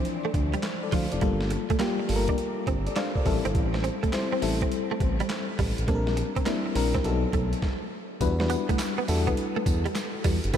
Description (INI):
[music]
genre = R&B, new jack swing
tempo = 103 BPM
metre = 4/4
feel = swing 67% on 16ths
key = unclear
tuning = A4 = 440 Hz
[part]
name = FM electric piano with auto-pan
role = accompaniment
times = 0.0-10.6 s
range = E3 to F5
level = -29 LUFS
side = left 4 dB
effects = none
[part]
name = direct-recorded clean electric guitar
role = riff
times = 0.0-10.6 s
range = F3 to D4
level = -32 LUFS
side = right 5 dB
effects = ensemble chorus
[part]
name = boom bap sampler-style drum kit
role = drums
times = 0.1-10.6 s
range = handclaps, hi-hat, kick drum, snare drum, tambourine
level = -29 LUFS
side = equal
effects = none
[part]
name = smooth synth bass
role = bass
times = 0.3-10.6 s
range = F1 to E2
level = -28 LUFS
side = equal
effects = none
[sound]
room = moderate huge ambient reverb, RT60 4.1 s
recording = dreamy mix soaked in reverb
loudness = -24 LUFS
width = side -9 dB against mid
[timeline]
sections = 0.0-8.2 A section; 8.2-10.6 B section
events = stop 7.6-8.2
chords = 0.0 Dm9; 1.2 Gm9; 3.3 Am7; 5.9 Bb69; 7.0 B7; 8.2 Em9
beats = 0.05 0.63 | 1.22 1.80 2.38 2.96 | 3.55 4.13 4.71 5.29 | 5.88 6.46 7.04 7.62 | 8.21 8.79 9.37 9.96 | 10.54